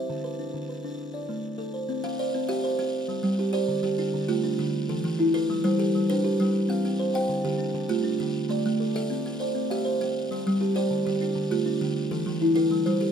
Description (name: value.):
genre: southern african traditional, mbira-style interlocking cycle.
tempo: 133 BPM (dotted quarters).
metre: 12/8.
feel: straight.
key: C major.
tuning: A4 = 439 Hz.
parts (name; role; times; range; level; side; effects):
buzzing kalimba; arpeggios; 0.0-13.1 s; D3 to F5; -27 LUFS; left 1 dB; none.
buzzing kalimba; arpeggios; 2.0-13.1 s; D3 to G5; -26 LUFS; right 2 dB; none.
room: light reverb.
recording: close, detailed microphones.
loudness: -24 LUFS.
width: side -7 dB against mid.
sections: 0.0-1.9 A section; 1.9-13.1 A section.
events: none.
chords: 0.1 Bmadd11/D; 1.0 Am; 1.9 C; 2.8 G5; 3.7 Dm; 4.6 Em; 5.5 G; 6.4 C5; 7.3 Dm; 8.2 A5; 9.1 C; 10.0 G5; 10.9 Dm; 11.8 Em.